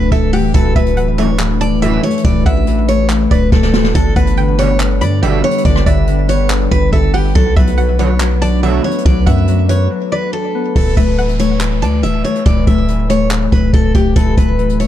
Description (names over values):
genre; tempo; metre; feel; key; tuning
hip hop, trap; 141 BPM; 4/4; half-time; D major; A4 = 439 Hz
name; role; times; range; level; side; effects
picked steel-string acoustic guitar; melody; 0.0-14.9 s; G4 to E5; -19 LUFS; right 1 dB; low-pass filter, ping-pong delay
string-like resonator pluck; second line; 0.0-12.4 s; D5 to B5; -26 LUFS; right 3 dB; chorus, ping-pong delay
Celtic harp; accompaniment; 0.0-14.9 s; D3 to B3; -18 LUFS; left 7 dB; low-pass filter
glassy FM pad; sustained chords; 0.0-10.7 s; E3 to B4; -23 LUFS; right 1 dB; ensemble chorus, built-in reverb
distorted 808-style bass; bass; 0.0-14.9 s; D1 to G2; -15 LUFS; equal; distortion
jazz brush drum kit; drums; 0.1-14.9 s; handclaps, hi-hat, kick drum, rim click, snare drum; -15 LUFS; equal; none
sync-sweep polysynth; stabs; 1.2-2.0, 4.6-5.4, 8.0-8.8 s; F#2 to G3; -20 LUFS; right 6 dB; chorus
downlifter; sound effects; 10.8-14.2 s; none; -34 LUFS; right 2 dB; none
room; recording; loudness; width
small room ambience; dark, warm production; -11 LUFS; side -12 dB against mid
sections
0.0-10.8 A section; 10.8-14.9 B section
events
drum fill 3.5-3.9; break 9.9-10.8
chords
0.0 Dadd9; 3.9 G; 7.4 Bm7; 10.8 Dsus2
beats
0.12 | 0.54 0.97 1.40 1.82 | 2.25 2.67 3.10 3.52 | 3.95 4.37 4.80 5.22 | 5.65 6.08 6.50 6.93 | 7.35 7.78 8.20 8.63 | 9.05 9.48 9.91 10.33 | 10.76 11.18 11.61 12.03 | 12.46 12.88 13.31 13.74 | 14.16 14.59